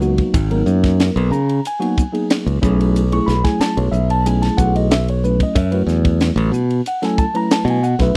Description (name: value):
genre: electric jazz fusion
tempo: 92 BPM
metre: 4/4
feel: straight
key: unclear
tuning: A4 = 440 Hz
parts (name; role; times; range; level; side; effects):
- mellow tine electric piano; accompaniment; 0.0-8.2 s; Gb3 to C#6; -22 LUFS; equal; subtle chorus
- modern bright fingered electric bass; bass; 0.0-8.1 s; Ab1 to Db3; -19 LUFS; equal; none
- tight funk drum kit; drums; 0.0-8.1 s; hi-hat, kick drum, ride cymbal, snare drum; -21 LUFS; equal; none
room: little or no reverb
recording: dry, close 1970s-style studio recording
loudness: -17 LUFS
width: mono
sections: 0.0-8.2 A section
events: none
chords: 0.0 Db13sus4; 2.6 B13sus4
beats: | 0.34 0.99 1.64 2.29 | 2.95 3.60 4.25 4.90 | 5.55 6.20 6.85 7.50 | 8.15